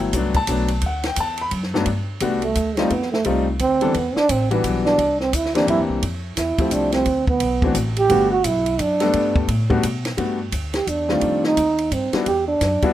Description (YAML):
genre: jazz, small-group swing and bop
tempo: 173 BPM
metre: 3/4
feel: swing 62% on 8ths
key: G major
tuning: A4 = 441 Hz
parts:
  - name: warm concert grand piano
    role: accompaniment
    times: 0.0-12.9 s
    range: G2 to B5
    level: -22 LUFS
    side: left 4 dB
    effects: none
  - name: upright bass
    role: bass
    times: 0.0-12.9 s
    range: G1 to B2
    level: -25 LUFS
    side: equal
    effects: none
  - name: compact cocktail drum kit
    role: drums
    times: 0.1-12.9 s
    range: hi-hat, kick drum, ride cymbal, snare drum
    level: -26 LUFS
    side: equal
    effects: none
  - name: breathy trombone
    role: second line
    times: 2.4-12.9 s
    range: G3 to G4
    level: -20 LUFS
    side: right 3 dB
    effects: none
room: small room reverb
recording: rough home demo mix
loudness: -18 LUFS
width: side -12 dB against mid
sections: 0.0-1.9 A section; 1.9-10.2 A section; 10.2-12.9 A section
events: trombone solo 1.9-12.9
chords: 0.0 Gmaj7; 2.9 F9; 3.9 Em7; 5.0 C9; 6.0 Fmaj7; 7.1 D5; 8.1 Gmaj7; 11.2 F9; 12.3 Em7